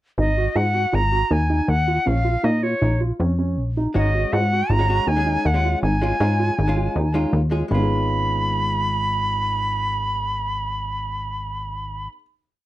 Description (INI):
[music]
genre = progressive instrumental, progressive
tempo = 159 BPM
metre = 5/4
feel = straight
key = G# dorian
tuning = A4 = 438 Hz
[part]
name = bright reedy jazz flute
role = melody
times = 0.2-12.1 s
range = C#5 to B5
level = -23 LUFS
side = equal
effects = none
[part]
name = dark concert grand piano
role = arpeggios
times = 0.2-12.2 s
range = G#3 to G#4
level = -26 LUFS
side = right 3 dB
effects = none
[part]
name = plucky analog bass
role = bass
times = 0.2-12.1 s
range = G#1 to A#2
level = -22 LUFS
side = equal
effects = none
[part]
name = vintage hollow-body jazz guitar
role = accompaniment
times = 3.9-12.1 s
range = G#3 to G#4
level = -29 LUFS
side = left 2 dB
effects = none
[sound]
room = moderate small room reverb, RT60 0.5 s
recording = dark, warm production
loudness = -19 LUFS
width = side -15 dB against mid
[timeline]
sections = 0.2-7.7 A section; 7.7-11.5 final chord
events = none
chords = 0.2 G#5; 2.1 A#m; 4.0 G#5; 7.7 G#m6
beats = | 0.18 0.56 0.94 1.31 1.69 | 2.07 2.44 2.82 3.20 3.58 | 3.95 4.33 4.71 5.08 5.46 | 5.83 6.21 6.58 6.96 7.34 | 7.71 8.09 8.46 8.84 9.22 | 9.60 9.97 10.35 10.73 11.10